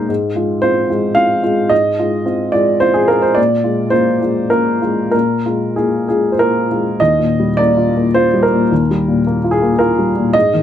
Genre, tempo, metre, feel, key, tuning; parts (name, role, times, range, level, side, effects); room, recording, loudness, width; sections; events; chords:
neoclassical minimalist piano; 95-113 BPM; 3/4; rubato; A4 = 440 Hz
warm upright piano; solo; 0.0-10.6 s; Eb2 to F5; -12 LUFS; equal
light reverb; close, detailed microphones; -12 LUFS; side -10 dB against mid
0.0-7.0 A section; 7.0-10.6 B section
0.1 Fm/Ab; 3.4 Bb7; 7.0 Ebadd9